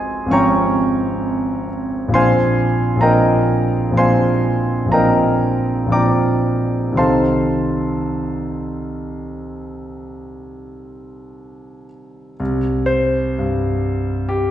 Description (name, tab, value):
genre	classical, impressionist solo piano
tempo	52-70 BPM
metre	5/4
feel	rubato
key	C minor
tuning	A4 = 440 Hz
part	clear concert grand piano	solo	0.0-14.5 s	Ab1 to Eb6	-16 LUFS	equal	none
room	wet scoring stage reverb, RT60 1.7 s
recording	heard from further back in the room, nothing above 10.6 kHz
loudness	-15 LUFS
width	side -11 dB against mid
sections	0.0-12.4 A section; 12.4-14.5 A section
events	none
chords	0.0 Dbmaj7/Ab; 2.2 Bbadd9; 7.0 Cm6; 12.4 C5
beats	0.34 1.24 | 2.16 3.03 3.98 4.93 5.92 | 6.97 8.11 9.22 10.31 11.37 | 12.40 13.36 14.29